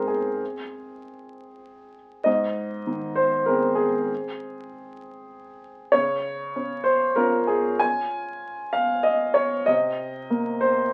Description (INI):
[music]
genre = neoclassical minimalist piano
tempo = 97 BPM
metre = 3/4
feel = rubato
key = Ab major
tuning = A4 = 441 Hz
[part]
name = warm upright piano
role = solo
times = 0.0-10.9 s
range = Ab2 to Ab5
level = -24 LUFS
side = equal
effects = none
[sound]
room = moderate small room reverb, RT60 0.6 s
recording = very old 78 rpm record, vinyl crackle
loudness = -24 LUFS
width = mono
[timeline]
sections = 0.0-10.9 A section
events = none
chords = 0.0 Ab; 5.9 Db; 9.7 Cm7